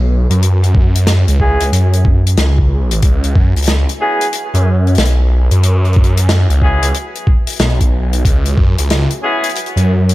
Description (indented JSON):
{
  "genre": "glitch hop",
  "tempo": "92 BPM",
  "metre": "4/4",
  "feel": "swing 64% on 16ths",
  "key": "C# minor",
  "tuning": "A4 = 439 Hz",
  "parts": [
    { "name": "phased detuned saw bass", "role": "bass", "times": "0.0-10.1 s", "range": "B1 to F#2", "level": "-11 LUFS", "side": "equal", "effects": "phaser, tube saturation" },
    { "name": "granular cloud pad", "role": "texture", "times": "0.1-10.1 s", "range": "F#4 to G#5", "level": "-32 LUFS", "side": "right 1 dB", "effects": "none" },
    { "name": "warm soul drum kit", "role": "drums", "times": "0.3-10.1 s", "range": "hi-hat, rim click, snare drum", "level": "-19 LUFS", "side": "left 2 dB", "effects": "none" },
    { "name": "electronic kick drum", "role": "drums", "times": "0.7-8.7 s", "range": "none", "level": "-12 LUFS", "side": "equal", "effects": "none" },
    { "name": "clear horn section", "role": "stabs", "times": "1.4-9.5 s", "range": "B3 to G#4", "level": "-19 LUFS", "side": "equal", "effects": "vintage 12-bit sampler grit, sidechain pumping, low-pass filter, diffuse ambient delay" }
  ],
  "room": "small room ambience",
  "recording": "none",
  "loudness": "-10 LUFS",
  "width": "side -17 dB against mid",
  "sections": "0.0-10.1 A section",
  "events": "filter sweep on horn section 0.0-10.1",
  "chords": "0.0 C#m7",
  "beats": "| 0.42 1.07 1.73 2.38 | 3.03 3.68 4.33 4.99 | 5.64 6.29 6.94 7.60 | 8.25 8.90 9.55"
}